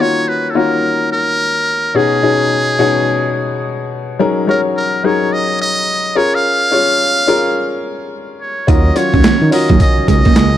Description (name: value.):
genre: R&B, new jack swing.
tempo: 107 BPM.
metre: 4/4.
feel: swing 62% on 16ths.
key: Eb minor.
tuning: A4 = 441 Hz.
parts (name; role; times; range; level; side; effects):
trumpet with metal mute; melody; 0.0-10.6 s; G#4 to F5; -16 LUFS; right 1 dB; none.
clear baby grand piano; accompaniment; 0.0-10.6 s; B2 to Db5; -16 LUFS; left 3 dB; none.
sweeping resonant pad; sustained chords; 8.7-10.6 s; Eb3 to Db4; -20 LUFS; right 2 dB; chorus, phaser.
clean electric guitar; riff; 8.7-10.5 s; Gb3 to Eb4; -17 LUFS; right 6 dB; lush chorus.
smooth synth bass; bass; 8.7-10.6 s; Db2 to Eb3; -14 LUFS; equal; none.
boom bap sampler-style drum kit; drums; 8.7-10.5 s; handclaps, hi-hat, kick drum, snare drum, tambourine; -12 LUFS; equal; none.
room: little or no reverb.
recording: none.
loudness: -11 LUFS.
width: side -11 dB against mid.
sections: 0.0-10.6 A section.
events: none.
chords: 0.0 Ebm7; 2.0 B6; 4.2 Gb6; 6.2 Bbm7; 8.7 Ebm7.